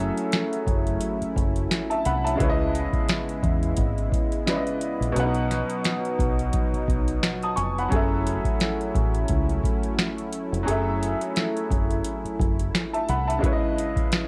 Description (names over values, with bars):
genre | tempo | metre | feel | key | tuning
hip hop, boom-bap hip-hop | 87 BPM | 4/4 | swing 56% on 16ths | F# dorian | A4 = 441 Hz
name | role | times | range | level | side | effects
clear upright piano | accompaniment | 0.0-14.3 s | B2 to D#6 | -30 LUFS | equal | high-pass filter, low-pass filter, cassette tape
warm analog pad | sustained chords | 0.0-14.3 s | C#3 to E4 | -34 LUFS | equal | chorus, high-pass filter, low-pass filter, cassette tape
deep dub fingered electric bass | bass | 0.0-13.4 s | E#1 to E2 | -29 LUFS | equal | none
booming analog drum machine | drums | 0.2-14.3 s | hi-hat, kick drum, snare drum | -28 LUFS | equal | cassette tape
room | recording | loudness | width
light reverb | home recording on cassette | -25 LUFS | mono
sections
0.0-14.3 A section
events
none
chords
0.0 F#m7; 2.4 C#m7; 5.2 B; 7.9 F#m7; 13.4 C#m7